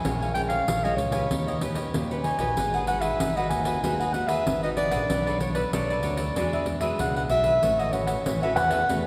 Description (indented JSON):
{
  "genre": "samba and choro",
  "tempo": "95 BPM",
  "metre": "4/4",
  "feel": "straight",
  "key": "unclear",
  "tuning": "A4 = 438 Hz",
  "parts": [
    { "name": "breathy clarinet", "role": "melody", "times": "0.0-9.0 s", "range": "B4 to G#5", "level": "-29 LUFS", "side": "equal", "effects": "none" },
    { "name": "cavaquinho", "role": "accompaniment", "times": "0.0-9.0 s", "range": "D4 to G#5", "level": "-35 LUFS", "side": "equal", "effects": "none" },
    { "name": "fingered electric bass with an envelope filter", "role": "bass", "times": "0.0-9.1 s", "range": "G#1 to E2", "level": "-33 LUFS", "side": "equal", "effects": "none" },
    { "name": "pandeiro", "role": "percussion", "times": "0.0-9.1 s", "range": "none", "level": "-34 LUFS", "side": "equal", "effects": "none" },
    { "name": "nylon-string guitar", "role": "accompaniment", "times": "0.1-9.1 s", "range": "A#2 to C#5", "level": "-35 LUFS", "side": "equal", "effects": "none" }
  ],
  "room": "wet church reverb, RT60 2.7 s",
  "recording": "recorded in a church or concert hall",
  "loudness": "-25 LUFS",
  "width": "mono",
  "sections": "0.0-9.1 A section",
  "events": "none",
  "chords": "0.0 A#m7; 1.3 D#7b13; 2.6 G#m7; 5.1 Bm9; 6.4 E9; 7.6 A69"
}